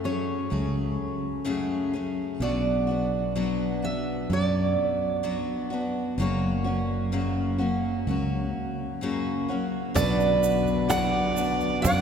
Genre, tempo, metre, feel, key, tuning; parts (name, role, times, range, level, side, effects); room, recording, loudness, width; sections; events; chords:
acoustic folk duo or small band; 64 BPM; 4/4; straight; B dorian; A4 = 440 Hz
picked steel-string acoustic guitar; melody; 0.0-12.0 s; C#5 to F#5; -29 LUFS; right 4 dB
picked steel-string acoustic guitar; accompaniment; 0.0-12.0 s; F#2 to G#4; -28 LUFS; left 2 dB
fretless electric bass; bass; 0.0-12.0 s; F#1 to F#2; -29 LUFS; left 1 dB
mellow tonewheel organ; sustained chords; 9.9-12.0 s; D3 to F#4; -35 LUFS; right 2 dB; slow rotary speaker
rich fiddle; second line; 10.0-12.0 s; B4 to D5; -31 LUFS; right 3 dB
cajon; percussion; 10.0-12.0 s; -31 LUFS; right 2 dB
tube shaker; percussion; 10.0-12.0 s; -39 LUFS; right 7 dB
wet cathedral reverb, RT60 5.7 s; recorded in a church or concert hall; -24 LUFS; side -7 dB against mid
0.0-10.0 A section; 10.0-12.0 B section
0.0 F#madd9; 2.4 Bm; 6.2 F#; 10.0 Bm